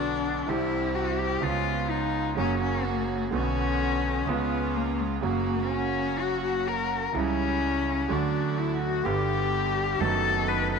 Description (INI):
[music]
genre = tango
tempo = 126 BPM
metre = 4/4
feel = rubato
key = B minor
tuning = A4 = 439 Hz
[part]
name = warm cello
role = second line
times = 0.0-10.8 s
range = G#3 to B4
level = -28 LUFS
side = left 10 dB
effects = none
[part]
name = clear concert grand piano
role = accompaniment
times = 0.0-10.8 s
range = G1 to G4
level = -29 LUFS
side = right 9 dB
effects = none
[part]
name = rich chamber string section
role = stabs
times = 0.0-10.8 s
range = D3 to A4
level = -34 LUFS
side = right 9 dB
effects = none
[part]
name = upright bass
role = bass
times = 0.0-10.8 s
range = F#1 to D2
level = -34 LUFS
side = equal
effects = none
[sound]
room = moderate plate reverb, RT60 3.1 s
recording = 1960s-style stereo with parts hard left and right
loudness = -24 LUFS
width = side -5 dB against mid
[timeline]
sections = 0.0-10.8 A section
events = cello solo 0.0-10.8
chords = 0.5 C; 1.4 C#7; 2.4 F#; 3.3 Bm; 4.3 C#7; 5.2 F#; 7.1 C#dim; 8.1 D; 9.1 G; 10.0 B7/F#